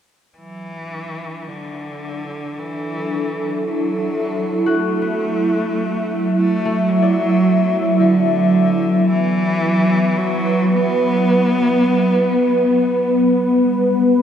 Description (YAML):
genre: ambient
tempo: 55 BPM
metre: 3/4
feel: straight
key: D major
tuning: A4 = 440 Hz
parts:
  - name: rich cello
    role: melody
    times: 0.4-12.9 s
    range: D3 to B3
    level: -23 LUFS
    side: left 1 dB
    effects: tape echo
  - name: warm analog pad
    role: sustained chords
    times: 0.4-14.2 s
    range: F#3 to E5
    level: -16 LUFS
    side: equal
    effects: chorus
  - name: concert harp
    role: arpeggios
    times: 4.7-11.2 s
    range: A3 to D5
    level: -30 LUFS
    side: left 4 dB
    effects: tape echo
room: wet huge ambient reverb, RT60 7.9 s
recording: cassette tape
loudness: -15 LUFS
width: side -9 dB against mid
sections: 0.4-14.2 A section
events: fade-in on harp 0.4-14.2; fade-in on cello 0.4-14.2; filter sweep on analog synth pad 0.4-14.2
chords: 0.4 Dadd9; 13.5 G